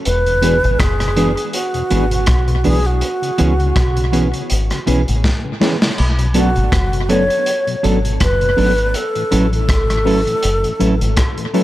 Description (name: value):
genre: lovers rock reggae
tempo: 81 BPM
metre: 4/4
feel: swing 55% on 16ths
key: B dorian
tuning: A4 = 440 Hz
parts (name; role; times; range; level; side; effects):
- breathy wooden-headed alto flute; melody; 0.1-11.5 s; F#4 to C#5; -19 LUFS; equal; tape echo
- deep dub fingered electric bass; bass; 0.1-11.2 s; E1 to C#2; -17 LUFS; equal; none
- crunchy breakbeat drum kit; drums; 0.1-11.6 s; hi-hat, kick drum, rim click, snare drum, splash cymbal; -20 LUFS; equal; tape echo
- mellow tonewheel organ; accompaniment; 0.3-11.6 s; E2 to D4; -26 LUFS; left 4 dB; none
- mellow tine electric piano; accompaniment; 0.4-11.6 s; C#4 to B4; -25 LUFS; left 2 dB; medium stereo tremolo
- mellow electric guitar; stabs; 0.4-11.6 s; E3 to A4; -21 LUFS; right 2 dB; tape echo
room: light reverb, small room ambience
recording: none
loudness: -13 LUFS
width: side -15 dB against mid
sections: 0.0-11.6 A section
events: drum fill 5.2-6.0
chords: 0.1 E7; 3.0 C#m7; 6.0 Bm7; 8.9 A6